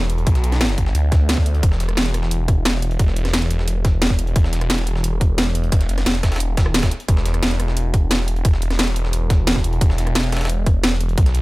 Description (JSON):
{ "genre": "dark technical drum and bass", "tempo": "176 BPM", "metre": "4/4", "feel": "straight", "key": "unclear", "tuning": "A4 = 440 Hz", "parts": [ { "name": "phased detuned saw bass", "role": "bass", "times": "0.0-11.4 s", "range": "E1 to D2", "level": "-19 LUFS", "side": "equal", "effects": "phaser, tube saturation, sidechain pumping" }, { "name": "breakbeat sampler-style drum kit", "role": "drums", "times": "0.1-11.4 s", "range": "hi-hat, snare drum", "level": "-31 LUFS", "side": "equal", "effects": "high-pass filter on hats, studio reverb, high-pass filter on snare" }, { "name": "drum and bass drum kit", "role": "drums", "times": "0.1-11.4 s", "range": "hi-hat, rim click, snare drum", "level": "-22 LUFS", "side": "equal", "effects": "overdrive, studio reverb" }, { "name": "electronic kick drum", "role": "drums", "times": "0.3-11.2 s", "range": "none", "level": "-16 LUFS", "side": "equal", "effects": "overdrive, studio reverb" } ], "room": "little or no reverb", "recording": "none", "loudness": "-16 LUFS", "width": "side -20 dB against mid", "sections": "0.0-11.4 A section", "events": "none", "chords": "none" }